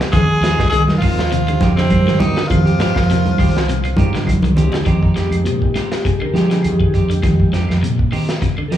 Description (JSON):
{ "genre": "afrobeat", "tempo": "101 BPM", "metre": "4/4", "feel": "swing 54% on 16ths", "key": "F dorian", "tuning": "A4 = 442 Hz", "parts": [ { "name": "mellow tonewheel organ", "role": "accompaniment", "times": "0.0-8.8 s", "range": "G3 to Bb4", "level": "-24 LUFS", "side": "left 2 dB", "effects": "slow rotary speaker, slapback echo" }, { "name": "clean electric guitar", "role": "stabs", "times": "0.0-8.8 s", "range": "Ab3 to G4", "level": "-27 LUFS", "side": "right 7 dB", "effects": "slapback echo" }, { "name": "crunchy breakbeat drum kit", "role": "drums", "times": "0.0-8.8 s", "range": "hi-hat, kick drum, snare drum", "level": "-20 LUFS", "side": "equal", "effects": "none" }, { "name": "raspy tenor saxophone", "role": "melody", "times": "0.1-4.3 s", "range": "C4 to Ab4", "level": "-21 LUFS", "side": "left 1 dB", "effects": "slapback echo" }, { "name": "electric guitar at the edge of break-up", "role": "arpeggios", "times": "0.1-8.8 s", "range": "C3 to F3", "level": "-21 LUFS", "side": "left 3 dB", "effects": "slapback echo, analog delay" }, { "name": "fingered electric bass", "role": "bass", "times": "0.1-8.8 s", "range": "C2 to F3", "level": "-18 LUFS", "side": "right 1 dB", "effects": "none" }, { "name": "claves", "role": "percussion", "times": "0.1-8.7 s", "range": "none", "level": "-34 LUFS", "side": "right 3 dB", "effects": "slapback echo" }, { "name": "congas", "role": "percussion", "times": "0.1-4.9 s", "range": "none", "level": "-20 LUFS", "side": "right 2 dB", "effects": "none" }, { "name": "mellow French horn", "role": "second line", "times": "0.2-4.3 s", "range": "C3 to Ab3", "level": "-25 LUFS", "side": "right 3 dB", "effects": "slapback echo" } ], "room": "little or no reverb", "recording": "live gig heard through the venue's PA, club reverb", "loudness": "-13 LUFS", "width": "side -11 dB against mid", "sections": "0.0-4.9 A section; 4.9-8.8 B section", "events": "drum fill 4.3-4.9; tonewheel organ solo 4.9-8.8", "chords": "0.0 Fm9" }